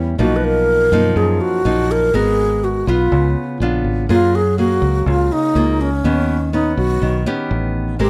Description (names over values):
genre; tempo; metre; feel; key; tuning
bossa nova; 123 BPM; 4/4; straight; Eb minor; A4 = 441 Hz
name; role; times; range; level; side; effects
nylon-string guitar; accompaniment; 0.0-8.1 s; F#2 to Bb4; -22 LUFS; equal; none
fingered electric bass; bass; 0.0-8.1 s; Ab1 to F#2; -21 LUFS; equal; none
breathy wooden-headed alto flute; melody; 0.2-8.1 s; Db4 to B4; -20 LUFS; equal; plate reverb
room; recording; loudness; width
light reverb; none; -17 LUFS; mono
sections
0.0-8.1 A section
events
none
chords
0.2 Bmaj7#11; 2.1 Abm9; 3.1 Db7b9; 4.1 Gbmaj9; 6.0 Eb7alt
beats
| 0.18 0.67 1.16 1.65 | 2.14 2.62 3.11 3.60 | 4.09 4.58 5.07 5.55 | 6.04 6.53 7.02 7.50 | 7.99